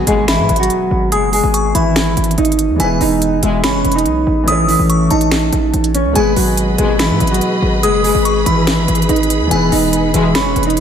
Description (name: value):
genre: hip hop, trap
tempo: 143 BPM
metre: 4/4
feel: half-time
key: G# phrygian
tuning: A4 = 442 Hz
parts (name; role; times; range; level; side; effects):
- mellow electric guitar; melody; 0.0-10.8 s; E3 to D#5; -15 LUFS; right 1 dB; low-pass filter, ping-pong delay
- delicate synth tine bell; second line; 0.0-10.8 s; G#5 to D#6; -21 LUFS; equal; chorus, phaser, ping-pong delay
- felt-muted upright piano; accompaniment; 0.0-10.8 s; B2 to C#5; -22 LUFS; left 1 dB; wide subtle chorus, low-pass filter
- hard-hitting 808-style bass; bass; 0.0-10.8 s; E1 to G#2; -18 LUFS; equal; none
- impact; sound effects; 0.0-1.1 s; none; -35 LUFS; left 1 dB; none
- warm brass ensemble; stabs; 0.1-0.5, 3.4-3.8, 6.8-7.2, 10.1-10.5 s; D#2 to G#3; -22 LUFS; left 4 dB; none
- trap drum kit; drums; 0.1-10.8 s; finger snaps, hi-hat, snare drum; -20 LUFS; equal; none
- warm symphonic string section; sustained chords; 6.2-10.8 s; G#4 to B5; -22 LUFS; left 1 dB; none
room: moderate lush hall reverb, RT60 1.7 s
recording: dreamy mix soaked in reverb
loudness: -12 LUFS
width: side -8 dB against mid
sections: 0.0-10.8 A section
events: impact 0.0-1.1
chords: 0.0 G#m; 2.8 E; 4.5 A; 6.2 G#m; 9.5 E